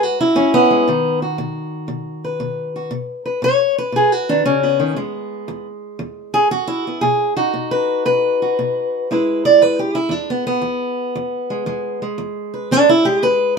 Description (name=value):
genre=acoustic country blues, solo or duo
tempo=117 BPM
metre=4/4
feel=swing 68% on 8ths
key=E major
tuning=A4 = 440 Hz
part: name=fingerpicked steel-string acoustic guitar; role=solo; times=0.0-13.6 s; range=E2 to D5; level=-16 LUFS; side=equal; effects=none
room=light reverb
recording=minimal, uncompressed stereo recording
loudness=-15 LUFS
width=side -5 dB against mid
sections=0.0-9.1 A section; 9.1-13.6 B section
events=steel-string acoustic guitar solo 9.1-13.6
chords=0.0 E; 0.9 B; 5.0 E; 7.0 B; 9.1 E